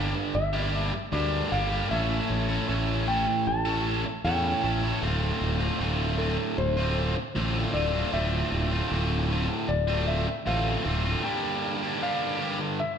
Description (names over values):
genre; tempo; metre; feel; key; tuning
post-rock; 77 BPM; 4/4; straight; D minor; A4 = 445 Hz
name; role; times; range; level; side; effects
clean lap steel guitar; melody; 0.0-13.0 s; A4 to A5; -31 LUFS; left 1 dB; none
distorted electric guitar; riff; 0.0-12.8 s; D2 to A4; -28 LUFS; right 1 dB; overdrive
fingered electric bass; bass; 0.0-11.1 s; D1 to E2; -29 LUFS; equal; none
room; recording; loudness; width
wet large studio reverb, RT60 1.5 s; band playing live in one room; -24 LUFS; side -7 dB against mid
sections
0.0-13.0 A section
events
none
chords
0.0 Gm7; 1.9 A; 5.0 Dm7; 11.2 Gm7